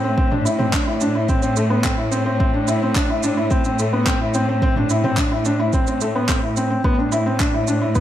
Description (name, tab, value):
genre	piano and strings electronica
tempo	108 BPM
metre	4/4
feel	straight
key	A minor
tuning	A4 = 440 Hz
part	felt-muted upright piano	riff	0.0-8.0 s	A3 to E4	-20 LUFS	equal	ping-pong delay
part	clear symphonic cello section	bass	0.0-8.0 s	A2	-22 LUFS	left 1 dB	sidechain pumping
part	electronic kick drum	drums	0.2-8.0 s	none	-21 LUFS	equal	none
part	deep house drum kit	drums	0.3-8.0 s	handclaps, shaker, toms	-26 LUFS	right 1 dB	none
room	moderate plate reverb, RT60 1.9 s, digital ambience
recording	dreamy mix soaked in reverb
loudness	-17 LUFS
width	side -11 dB against mid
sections	0.0-8.0 A section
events	none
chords	0.0 Am